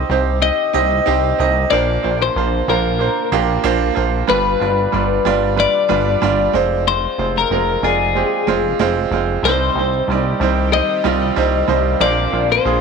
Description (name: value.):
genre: piano-driven pop.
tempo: 93 BPM.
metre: 4/4.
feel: swing 56% on 16ths.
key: C minor.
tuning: A4 = 440 Hz.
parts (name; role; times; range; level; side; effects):
twelve-string electric guitar; melody; 0.0-12.8 s; Ab4 to Eb5; -18 LUFS; left 11 dB; none.
bright grand piano; accompaniment; 0.0-12.8 s; G2 to Eb5; -18 LUFS; right 11 dB; none.
chorused synth bass; bass; 0.0-12.8 s; F1 to C2; -21 LUFS; left 1 dB; none.
lush unison pad; sustained chords; 9.4-12.8 s; D3 to G4; -30 LUFS; left 1 dB; chorus, phaser.
room: moderate spring reverb, RT60 1.9 s.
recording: 1960s-style stereo with parts hard left and right.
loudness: -14 LUFS.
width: side -5 dB against mid.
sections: 0.0-12.8 A section.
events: none.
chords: 0.0 Cm; 1.7 Bbadd9; 4.3 G7; 6.5 Fm; 9.4 Cm; 12.0 Bbadd9.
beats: 0.42 1.06 | 1.71 2.35 3.00 3.64 | 4.29 4.93 5.57 6.22 | 6.86 7.51 8.15 8.79 | 9.44 10.08 10.73 11.37 | 12.02 12.66.